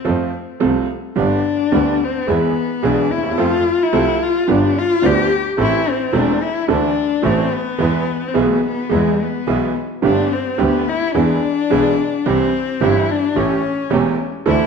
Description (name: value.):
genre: tango.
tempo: 108 BPM.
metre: 4/4.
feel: rubato.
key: A minor.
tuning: A4 = 440 Hz.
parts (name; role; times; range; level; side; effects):
warm cello; second line; 0.0-14.7 s; G#3 to G4; -19 LUFS; left 6 dB; none.
bright upright piano; accompaniment; 0.0-14.7 s; E1 to A4; -18 LUFS; right 4 dB; none.
warm double bass; bass; 0.1-14.7 s; E1 to F2; -23 LUFS; right 2 dB; none.
bandoneon; stabs; 1.2-14.7 s; G3 to G4; -28 LUFS; right 4 dB; none.
room: wet large studio reverb, RT60 1.2 s.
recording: none.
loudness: -15 LUFS.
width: side -6 dB against mid.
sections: 0.0-14.7 A section.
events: cello solo 0.0-14.7.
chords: 0.0 F; 1.2 G; 2.3 E; 3.4 F; 4.5 G; 5.6 Am; 6.7 Dsus2; 7.8 E; 10.0 Gadd9; 11.1 E; 12.3 C; 13.4 A7.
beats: 0.06 0.62 | 1.18 1.73 2.29 2.84 | 3.39 3.94 4.49 5.04 | 5.59 6.14 6.69 7.25 | 7.80 8.36 8.91 9.48 | 10.04 10.59 11.15 11.71 | 12.26 12.81 13.37 13.92 | 14.47.